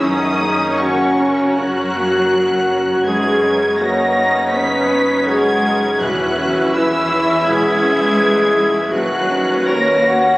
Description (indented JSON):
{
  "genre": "cinematic, emotional film score for orchestra",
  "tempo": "81 BPM",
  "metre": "4/4",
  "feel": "rubato",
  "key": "E lydian",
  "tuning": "A4 = 441 Hz",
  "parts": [
    { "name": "muted symphonic violin section", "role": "melody", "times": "0.0-10.4 s", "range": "C#6 to B6", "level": "-21 LUFS", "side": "equal", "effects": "none" },
    { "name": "muted symphonic violin section", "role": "second line", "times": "0.0-10.4 s", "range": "A#4 to E5", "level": "-24 LUFS", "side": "equal", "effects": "none" },
    { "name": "warm clarinet", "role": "second line", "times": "0.0-10.1 s", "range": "C#4 to B4", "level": "-22 LUFS", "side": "equal", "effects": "none" },
    { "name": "muted symphonic viola section", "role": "accompaniment", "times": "0.0-10.4 s", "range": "C#4 to G#4", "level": "-24 LUFS", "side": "right 1 dB", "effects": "none" },
    { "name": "warm baby grand piano", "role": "accompaniment", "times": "0.0-10.4 s", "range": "D#2 to C#5", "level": "-23 LUFS", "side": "equal", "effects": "none" },
    { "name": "dark French horn section", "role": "sustained chords", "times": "0.0-10.4 s", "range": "C#4 to C#5", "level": "-19 LUFS", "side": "equal", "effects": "none" },
    { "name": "concert harp", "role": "arpeggios", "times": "0.0-10.4 s", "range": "F#2 to F#5", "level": "-24 LUFS", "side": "left 2 dB", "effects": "none" },
    { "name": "muted studio double bass section", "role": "bass", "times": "0.0-10.4 s", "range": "D#2 to F#2", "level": "-28 LUFS", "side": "equal", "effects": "none" },
    { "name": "muted symphonic cello section", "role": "bass", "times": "0.0-10.4 s", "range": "C#3 to B3", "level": "-25 LUFS", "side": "equal", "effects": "none" },
    { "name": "timpani", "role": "percussion", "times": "6.0-7.1 s", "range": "E2", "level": "-34 LUFS", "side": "equal", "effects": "none" }
  ],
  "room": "wet concert hall reverb, RT60 2.3 s",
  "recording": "recorded on a phone in the room, club reverb, compression",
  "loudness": "-13 LUFS",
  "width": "side -20 dB against mid",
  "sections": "0.0-10.4 A section",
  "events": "none",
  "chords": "0.0 F#; 3.1 Badd9/F#; 6.0 E6; 8.9 Badd9/D#"
}